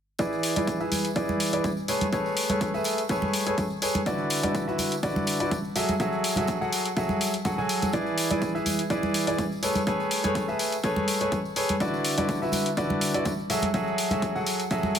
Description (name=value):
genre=piano house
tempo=124 BPM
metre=4/4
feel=swing 54% on 16ths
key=E mixolydian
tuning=A4 = 440 Hz
part: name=bright grand piano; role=riff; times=0.2-15.0 s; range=D3 to G#5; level=-26 LUFS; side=equal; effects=sidechain pumping, low-pass filter, digital delay
part: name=electronic hi-hat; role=drums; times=0.2-15.0 s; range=none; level=-31 LUFS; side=left 1 dB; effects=none
part: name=electronic kick drum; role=drums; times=0.2-14.8 s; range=none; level=-32 LUFS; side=equal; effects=high-pass filter on kick
part: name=tambourine and congas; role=percussion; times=0.2-15.0 s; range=none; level=-31 LUFS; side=equal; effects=none
room=light reverb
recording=none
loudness=-24 LUFS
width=side -8 dB against mid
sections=0.2-15.0 A section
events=none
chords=0.2 E7; 1.9 Amaj9; 4.1 D69; 5.8 F#m9; 7.9 E7; 9.6 Amaj9; 11.8 D69; 13.5 F#m9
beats=| 0.19 0.68 1.16 1.64 | 2.13 2.61 3.10 3.58 | 4.06 4.55 5.03 5.51 | 6.00 6.48 6.97 7.45 | 7.93 8.42 8.90 9.38 | 9.87 10.35 10.84 11.32 | 11.80 12.29 12.77 13.26 | 13.74 14.22 14.71